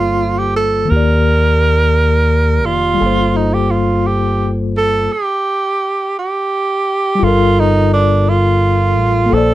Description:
slow six-eight R&B; 57 BPM (dotted quarters); 6/8; straight; G minor; A4 = 439 Hz
breathy tenor saxophone; melody; 0.0-9.5 s; D4 to Bb4; -15 LUFS; right 3 dB; slapback echo
mellow tine electric piano; accompaniment; 0.0-9.5 s; Eb3 to D5; -17 LUFS; left 4 dB; medium stereo tremolo
deep dub fingered electric bass; bass; 0.0-9.5 s; F1 to Eb2; -16 LUFS; equal
little or no reverb; dry, close 1970s-style studio recording; -12 LUFS; side -15 dB against mid
0.0-7.2 A section; 7.2-9.5 B section
stop 5.1-7.2
0.0 Gm11; 0.9 Ebmaj7; 3.0 Gm11; 5.1 N.C.; 7.2 Gm9
| 0.89 1.94 | 2.99 4.04 | 5.10 6.15 | 7.20 8.25 | 9.31

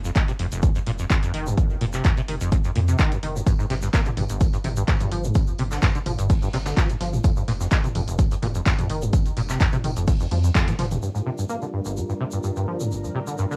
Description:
acid house; 127 BPM; 4/4; straight; G phrygian; A4 = 440 Hz
acid bass, saw; riff; 0.0-13.5 s; F1 to Bb3; -29 LUFS; equal; tube saturation, ensemble chorus, sidechain pumping, cassette tape, analog delay
round analog bass; bass; 0.0-11.0 s; F1 to F2; -29 LUFS; equal; tube saturation, sidechain pumping
tube shaker; percussion; 0.0-13.6 s; -44 LUFS; equal
electronic kick drum; drums; 0.2-10.7 s; -22 LUFS; equal; cassette tape
punchy analog drum machine; drums; 0.2-11.0 s; handclaps, hi-hat, toms; -31 LUFS; equal; low-pass filter on hats, cassette tape, low-pass filter on snare, low-pass filter on toms, low-pass filter on room
jazz brush drum kit; drums; 3.5-10.9 s; hi-hat, snare drum, tambourine; -41 LUFS; equal; sidechain pumping on hats, high-pass filter on hats, cassette tape, high-pass filter on snare, sidechain pumping on perc, high-pass filter on perc, high-pass filter on room
string machine, full ensemble; sustained chords; 11.0-13.6 s; G3 to Bb4; -34 LUFS; equal; ensemble chorus, sidechain pumping, cassette tape
light reverb; home recording on cassette; -23 LUFS; mono
0.0-11.0 A section; 11.0-13.6 B section
drum fill 10.3-11.0; band accent 10.6; filter sweep on string machine 11.0-13.6
0.0 F7(no3); 3.5 G7(no3); 7.2 N.C.; 11.0 Gm7
0.16 0.63 1.10 | 1.57 2.05 2.52 2.99 | 3.46 3.94 4.41 4.88 | 5.35 5.83 6.30 6.77 | 7.24 7.72 8.19 8.66 | 9.13 9.61 10.08 10.55 | 11.02 11.49 11.97 12.44 | 12.91 13.38

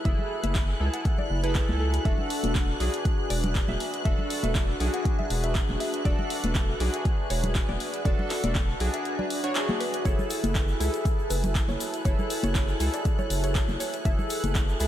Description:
deep house; 120 BPM; 4/4; swing 54% on 16ths; F# minor; A4 = 438 Hz
chorused polysynth; stabs; 0.0-14.9 s; D4 to C#5; -31 LUFS; equal; vintage 12-bit sampler grit, sidechain pumping, analog delay
dark studio string section; texture; 0.0-14.9 s; F#4 to G#5; -40 LUFS; equal; sidechain pumping
string machine, violins; texture; 0.0-14.9 s; F#6; -40 LUFS; equal; ensemble chorus, sidechain pumping
mallet-like synth pluck; melody; 0.1-14.4 s; A4 to F#5; -37 LUFS; right 1 dB; chorus, ping-pong delay
round analog bass; bass; 0.1-14.9 s; E1 to C#2; -28 LUFS; equal; sidechain pumping
deep house drum kit; drums; 0.1-14.9 s; handclaps, hi-hat; -34 LUFS; left 1 dB
electronic kick drum; drums; 0.1-14.7 s; -26 LUFS; equal
congas; percussion; 0.2-14.5 s; -34 LUFS; left 1 dB; sidechain pumping on perc
egg shaker; percussion; 10.1-14.9 s; -43 LUFS; left 4 dB
light reverb; -24 LUFS; side -12 dB against mid
0.0-14.9 A section
0.0 F#m9; 2.1 E7sus4; 10.1 F#m9
| 0.05 0.55 1.05 1.55 | 2.05 2.55 3.05 3.55 | 4.05 4.55 5.05 5.55 | 6.05 6.55 7.05 7.55 | 8.05 8.55 9.05 9.55 | 10.05 10.55 11.05 11.55 | 12.05 12.55 13.05 13.55 | 14.05 14.55

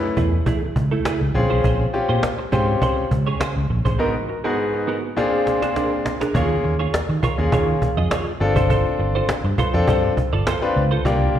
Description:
early-eighties boogie funk; 102 BPM; 4/4; straight; A4 = 441 Hz
bright concert grand piano; accompaniment; 0.0-11.4 s; Ab2 to B4; -22 LUFS; left 2 dB; plate reverb, slapback echo
semi-hollow electric guitar; riff; 0.0-11.4 s; A3 to Eb5; -26 LUFS; right 6 dB; ensemble chorus, slapback echo
cajon; drums; 0.0-11.4 s; -24 LUFS; equal; slapback echo
fingered electric bass; bass; 0.2-11.4 s; G1 to Eb3; -21 LUFS; equal
moderate club reverb, RT60 0.6 s; live gig heard through the venue's PA, recital hall reverb; -18 LUFS; side -10 dB against mid
0.0-6.3 A section; 6.3-11.4 B section
drum fill 5.2-6.3
0.0 Gbm9 (rootless); 1.3 Bbm9; 4.0 Abm9; 5.2 Bb7; 6.3 Eb9sus4; 8.4 G9sus4
0.46 1.05 | 1.64 2.23 2.82 3.40 | 3.99 4.58 5.17 5.76 | 6.35 6.93 7.52 8.11 | 8.70 9.29 9.88 10.46 | 11.05

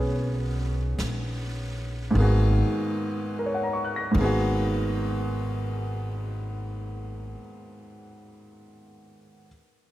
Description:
jazz ballad; 50 BPM; 4/4; swing 66% on 8ths; G# minor; A4 = 442 Hz
clear baby grand piano; accompaniment; 0.0-9.5 s; G#2 to A#6; -28 LUFS; equal
upright bass; bass; 0.0-7.3 s; G#1 to B1; -26 LUFS; equal
jazz brush drum kit; drums; 1.0-4.4 s; brushed snare drum, hi-hat, kick drum, ride cymbal, snare drum; -40 LUFS; left 1 dB
moderate lush hall reverb, RT60 3.0 s; dreamy mix soaked in reverb, cassette tape; -24 LUFS; side -15 dB against mid
0.0-2.2 A section; 2.2-7.0 B section
slowing down 0.0-2.2
0.0 G#m7
0.99 | 2.17 3.38 4.57 5.77

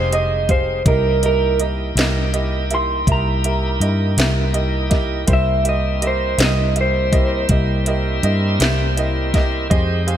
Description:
slow blues; 54 BPM (dotted quarters); 12/8; straight; A4 = 440 Hz
electric guitar through a small old amp; melody; 0.0-7.5 s; Bb4 to C6; -22 LUFS; right 2 dB; slapback echo
clear grand piano; accompaniment; 0.0-10.2 s; E4 to F5; -24 LUFS; right 4 dB; slapback echo
bright tonewheel organ; sustained chords; 0.0-10.2 s; G3 to G4; -27 LUFS; equal; slow rotary speaker, overdrive
vintage muted fingered electric bass; bass; 0.0-10.2 s; F1 to G2; -20 LUFS; left 1 dB
garage drum kit; drums; 0.1-10.2 s; hi-hat, kick drum, snare drum; -20 LUFS; left 1 dB
light reverb, digital ambience; -15 LUFS; side -10 dB against mid
0.0-10.2 A section
0.0 Fm7; 0.9 C7#9
| 0.86 1.97 3.08 4.18 | 5.29 6.39 7.50 8.61 | 9.71

